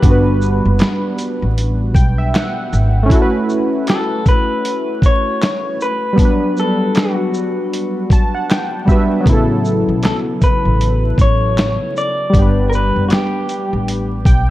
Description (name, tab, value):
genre	lo-fi hip hop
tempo	78 BPM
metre	4/4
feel	swing 61% on 16ths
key	unclear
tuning	A4 = 439 Hz
part	electric guitar through a small old amp	melody	0.0-14.5 s	F#4 to D5	-20 LUFS	left 2 dB	low-pass filter
part	warm analog keys	accompaniment	0.0-14.5 s	C#3 to A5	-18 LUFS	equal	chorus, cassette tape, low-pass filter
part	upright bass	bass	0.0-3.1, 9.3-14.5 s	F#1 to B1	-16 LUFS	equal	none
part	dusty soul sampler-style drum kit	drums	0.0-14.5 s	handclaps, hi-hat, kick drum, shaker, snare drum	-15 LUFS	equal	none
room	light reverb, digital ambience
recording	dark, warm production, vinyl crackle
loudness	-13 LUFS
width	side -15 dB against mid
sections	0.0-14.5 A section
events	none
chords	0.0 Gmaj7; 3.1 A69; 6.2 Gmaj7; 9.3 A69; 12.3 G